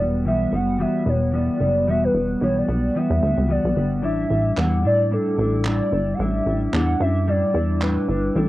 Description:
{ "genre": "indie pop, bedroom pop", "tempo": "111 BPM", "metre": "4/4", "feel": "swing 55% on 16ths", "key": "unclear", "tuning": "A4 = 438 Hz", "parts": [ { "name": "hollow clarinet-like synth lead", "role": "melody", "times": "0.0-8.5 s", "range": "A4 to F#5", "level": "-24 LUFS", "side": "equal", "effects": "analog chorus, cassette tape" }, { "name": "mellow electric guitar", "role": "accompaniment", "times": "0.0-8.5 s", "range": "A2 to F#4", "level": "-23 LUFS", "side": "left 1 dB", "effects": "analog chorus, vibrato effect, cassette tape" }, { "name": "plucky analog bass", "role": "bass", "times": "0.0-8.5 s", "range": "E1 to A2", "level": "-22 LUFS", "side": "equal", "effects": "none" }, { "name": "group handclap", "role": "percussion", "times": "4.6-8.0 s", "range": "none", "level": "-31 LUFS", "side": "right 2 dB", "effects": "none" } ], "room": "light reverb", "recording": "home recording on cassette", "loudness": "-18 LUFS", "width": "side -16 dB against mid", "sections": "0.0-8.5 A section", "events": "none", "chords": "0.0 Emadd9; 4.0 A7sus4", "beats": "0.26 0.80 1.33 | 1.88 2.42 2.96 3.50 | 4.04 4.58 5.12 5.66 | 6.20 6.74 7.28 7.82 | 8.36" }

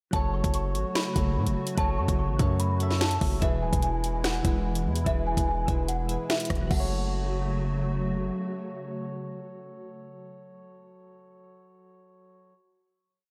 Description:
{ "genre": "hip hop, drill", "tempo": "146 BPM", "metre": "4/4", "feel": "half-time", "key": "F# minor", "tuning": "A4 = 440 Hz", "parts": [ { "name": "small celesta", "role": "melody", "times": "0.1-7.9 s", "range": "E5 to C#6", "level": "-36 LUFS", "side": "equal", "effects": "ensemble chorus, analog delay" }, { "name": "soft electric-piano-like synth keys", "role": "accompaniment", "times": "0.1-12.5 s", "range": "E3 to E5", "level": "-38 LUFS", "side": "equal", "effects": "chorus, tremolo" }, { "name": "hollow soft pad", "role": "sustained chords", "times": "0.1-10.8 s", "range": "B2 to F#4", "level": "-36 LUFS", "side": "equal", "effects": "ensemble chorus" }, { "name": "hard-hitting 808-style bass", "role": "bass", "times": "0.1-8.3 s", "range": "D1 to A2", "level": "-31 LUFS", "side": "equal", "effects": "none" }, { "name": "drill drum kit", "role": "drums", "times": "0.1-6.8 s", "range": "crash cymbal, finger snaps, hi-hat, kick drum, rim click, snare drum", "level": "-31 LUFS", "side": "equal", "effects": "none" } ], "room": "moderate lush hall reverb, RT60 2.0 s, digital ambience", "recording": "dreamy mix soaked in reverb", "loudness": "-27 LUFS", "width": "mono", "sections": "0.1-6.7 hook; 6.7-10.0 final chord", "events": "none", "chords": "0.1 F#m; 3.4 E; 6.7 F#m", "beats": "| 0.13 0.54 0.95 1.36 | 1.78 2.19 2.60 3.01 | 3.42 3.83 4.24 4.65 | 5.06 5.47 5.88 6.30 | 6.71 7.12 7.53 7.94 | 8.35 8.76 9.17 9.58" }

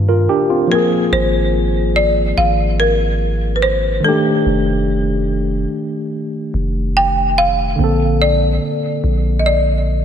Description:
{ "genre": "contemporary R&B", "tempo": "72 BPM", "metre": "4/4", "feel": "straight", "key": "Bb major", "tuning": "A4 = 441 Hz", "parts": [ { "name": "tine electric piano", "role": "accompaniment", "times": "0.0-10.0 s", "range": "D3 to Bb4", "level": "-18 LUFS", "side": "equal", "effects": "medium stereo tremolo" }, { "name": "long sustained 808-style bass", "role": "bass", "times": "0.0-10.0 s", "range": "F1 to G2", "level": "-18 LUFS", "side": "equal", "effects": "none" }, { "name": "folk marimba with medium hard mallets", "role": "melody", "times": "0.7-10.0 s", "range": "A4 to G5", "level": "-17 LUFS", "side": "equal", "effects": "diffuse ambient delay" } ], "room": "moderate plate reverb, RT60 3.2 s", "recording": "dreamy mix soaked in reverb", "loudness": "-14 LUFS", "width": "side -8 dB against mid", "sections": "0.0-7.8 A section; 7.8-10.0 B section", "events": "none", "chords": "0.0 Cm11; 0.7 Ab69; 4.0 F13; 7.8 Bbmaj9", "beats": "0.29 | 1.12 1.96 2.79 3.62 | 4.46 5.29 6.12 6.96 | 7.79 8.62 9.46" }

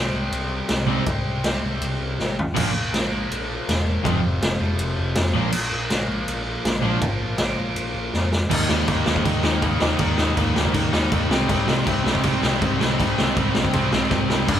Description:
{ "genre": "punk rock", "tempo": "161 BPM", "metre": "4/4", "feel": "straight", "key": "C minor", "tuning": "A4 = 440 Hz", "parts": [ { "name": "sludgy distorted guitar", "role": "riff", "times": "0.0-14.6 s", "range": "F2 to Eb4", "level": "-28 LUFS", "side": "equal", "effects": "overdrive" }, { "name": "overdriven picked electric bass", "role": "bass", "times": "0.0-14.6 s", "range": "E1 to F2", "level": "-28 LUFS", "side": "equal", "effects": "none" }, { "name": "raw garage drum kit", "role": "drums", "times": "0.3-14.6 s", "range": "crash cymbal, kick drum, ride cymbal, snare drum, toms", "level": "-23 LUFS", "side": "equal", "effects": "none" }, { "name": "crunchy overdriven guitar", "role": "riff", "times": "0.9-14.6 s", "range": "F2 to Eb4", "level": "-25 LUFS", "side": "left 8 dB", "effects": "none" }, { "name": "sludgy distorted guitar", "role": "riff", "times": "0.9-14.6 s", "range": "F2 to Eb4", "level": "-25 LUFS", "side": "right 7 dB", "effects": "overdrive" } ], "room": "light reverb", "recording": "band playing live in one room", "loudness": "-19 LUFS", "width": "side -10 dB against mid", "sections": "0.0-8.5 A section; 8.5-14.6 B section", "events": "half time 0.0-8.5; drum fill 2.2-2.5, 8.1-8.5, 14.1-14.5", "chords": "0.0 C5; 2.5 Bb5; 4.0 F5; 5.3 Bb5; 8.5 Eb; 11.3 Cm", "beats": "0.32 0.69 | 1.06 1.44 1.81 2.18 | 2.55 2.92 3.29 3.66 | 4.04 4.41 4.78 5.15 | 5.52 5.89 6.27 6.64 | 7.01 7.38 7.76 8.13 | 8.50 8.88 9.25 9.62 | 10.00 10.37 10.74 11.12 | 11.49 11.86 12.24 12.61 | 12.98 13.36 13.73 14.11 | 14.48" }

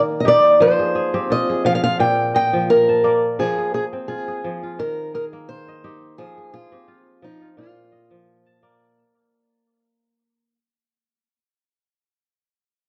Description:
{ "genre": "west african traditional", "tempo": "86 BPM", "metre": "4/4", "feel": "swing 54% on 16ths", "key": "F dorian", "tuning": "A4 = 440 Hz", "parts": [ { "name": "kora", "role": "arpeggios", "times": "0.0-10.6 s", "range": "Bb2 to A5", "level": "-26 LUFS", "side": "equal", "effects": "plate reverb" }, { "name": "fingerpicked old ladder-braced acoustic guitar", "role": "melody", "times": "0.2-8.6 s", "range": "Eb4 to G5", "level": "-19 LUFS", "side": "equal", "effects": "plate reverb" } ], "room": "wet small room reverb, RT60 0.5 s", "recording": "worn, warbling old tape, cassette tape, warbly pitch drift", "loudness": "-18 LUFS", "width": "mono", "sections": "0.0-9.0 A section", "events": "fade-out 0.0-9.0", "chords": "0.0 Eb; 0.6 Fm; 2.0 Bb; 3.4 Fm; 4.8 Eb; 6.2 Fm; 7.6 Bb", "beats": "| 0.60 1.30 2.00 2.69 | 3.39 4.09 4.79 5.48 | 6.18 6.88 7.57 8.27" }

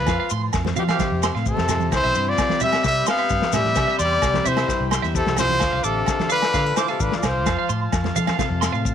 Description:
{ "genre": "highlife guitar band", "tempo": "130 BPM", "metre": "4/4", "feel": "straight", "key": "C major", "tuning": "A4 = 437 Hz", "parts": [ { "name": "clear trumpet", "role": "melody", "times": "0.0-7.7 s", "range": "G4 to F5", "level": "-22 LUFS", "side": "equal", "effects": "none" }, { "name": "growling tenor saxophone", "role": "second line", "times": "0.0-7.7 s", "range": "B2 to B3", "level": "-28 LUFS", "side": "left 11 dB", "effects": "none" }, { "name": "picked plugged-in steel-string acoustic guitar", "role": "accompaniment", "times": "0.0-8.9 s", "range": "G2 to A4", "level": "-31 LUFS", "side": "left 10 dB", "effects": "none" }, { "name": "fingered electric bass", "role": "bass", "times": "0.0-8.9 s", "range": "A1 to F3", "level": "-25 LUFS", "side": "equal", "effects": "none" }, { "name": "electric guitar at the edge of break-up", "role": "arpeggios", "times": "0.1-8.8 s", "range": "E5 to D6", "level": "-28 LUFS", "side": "right 13 dB", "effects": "tremolo, tape echo" }, { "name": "vintage drum kit", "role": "drums", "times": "0.1-8.9 s", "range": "kick drum, snare drum", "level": "-26 LUFS", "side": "left 4 dB", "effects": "none" }, { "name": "agogo bells", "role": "percussion", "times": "0.1-8.7 s", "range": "none", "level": "-31 LUFS", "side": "right 12 dB", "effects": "none" }, { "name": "congas", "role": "percussion", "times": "0.1-8.5 s", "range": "none", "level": "-29 LUFS", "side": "right 9 dB", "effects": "none" }, { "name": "maracas", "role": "percussion", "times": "0.1-8.9 s", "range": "none", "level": "-32 LUFS", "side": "left 13 dB", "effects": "none" }, { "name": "combo organ", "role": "sustained chords", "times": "1.9-8.9 s", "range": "F5 to D6", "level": "-34 LUFS", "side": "right 1 dB", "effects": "none" } ], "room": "little or no reverb", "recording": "1960s-style stereo with parts hard left and right", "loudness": "-18 LUFS", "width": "side -9 dB against mid", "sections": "0.0-8.9 A section", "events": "none", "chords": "0.1 F; 1.9 Cmaj7; 5.6 Dm7; 7.5 F", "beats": "| 0.08 0.54 1.00 1.46 | 1.92 2.38 2.84 3.30 | 3.77 4.23 4.69 5.15 | 5.61 6.07 6.54 7.00 | 7.46 7.92 8.39 8.85" }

